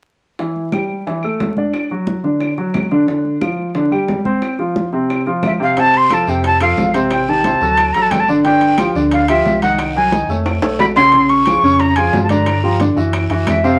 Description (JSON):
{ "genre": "Afro-Cuban jazz", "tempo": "179 BPM", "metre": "4/4", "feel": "straight", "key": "F major", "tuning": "A4 = 440 Hz", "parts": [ { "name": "warm grand piano", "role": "accompaniment", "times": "0.4-13.8 s", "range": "C3 to Eb5", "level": "-19 LUFS", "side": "equal", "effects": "none" }, { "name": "bongos", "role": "percussion", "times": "0.4-13.6 s", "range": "none", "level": "-30 LUFS", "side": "equal", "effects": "none" }, { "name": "congas", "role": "percussion", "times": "0.4-13.8 s", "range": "none", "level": "-26 LUFS", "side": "equal", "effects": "none" }, { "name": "claves", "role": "percussion", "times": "0.7-13.6 s", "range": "none", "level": "-32 LUFS", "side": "equal", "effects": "none" }, { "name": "breathy mellow jazz flute", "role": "melody", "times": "5.5-13.8 s", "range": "E5 to Db6", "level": "-16 LUFS", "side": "equal", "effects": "none" }, { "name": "pure sine sub bass", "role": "bass", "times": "5.8-13.8 s", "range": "F1 to G2", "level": "-25 LUFS", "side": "equal", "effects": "none" }, { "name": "guiro", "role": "percussion", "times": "5.8-13.8 s", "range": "none", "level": "-38 LUFS", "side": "equal", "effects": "none" }, { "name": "timbales", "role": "percussion", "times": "5.8-13.6 s", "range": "none", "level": "-27 LUFS", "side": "equal", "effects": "none" } ], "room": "moderate studio reverb, RT60 0.8 s", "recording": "vinyl crackle", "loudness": "-15 LUFS", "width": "mono", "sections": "0.4-5.8 A section; 5.8-13.8 B section", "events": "drum fill 10.5-11.1", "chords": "0.4 A5; 1.7 D; 3.1 G5; 4.4 Csus4; 5.8 F; 7.1 Am7b5; 7.8 D; 8.4 G7sus4; 9.8 Cm7b5; 10.5 Faug; 11.1 Bbm7; 12.5 Gm7; 13.1 Cadd11" }